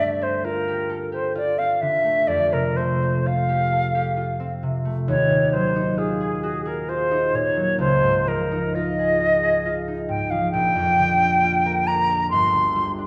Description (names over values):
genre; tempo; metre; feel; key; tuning
classical, impressionist duo for flute and harp; 66 BPM; 3/4; rubato; unclear; A4 = 440 Hz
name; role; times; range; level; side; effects
silver concert flute; melody; 0.0-12.9 s; Ab4 to C6; -23 LUFS; equal; none
concert harp; accompaniment; 0.0-13.1 s; G1 to Bb5; -27 LUFS; equal; none
room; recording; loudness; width
wet recital hall reverb, RT60 1.5 s; recorded in a church or concert hall; -21 LUFS; mono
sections
0.0-13.1 A section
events
none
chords
0.0 Gm11; 2.3 Fadd9; 5.1 Ebmadd9; 7.8 C#add9; 10.5 Bb69; 12.3 Gm7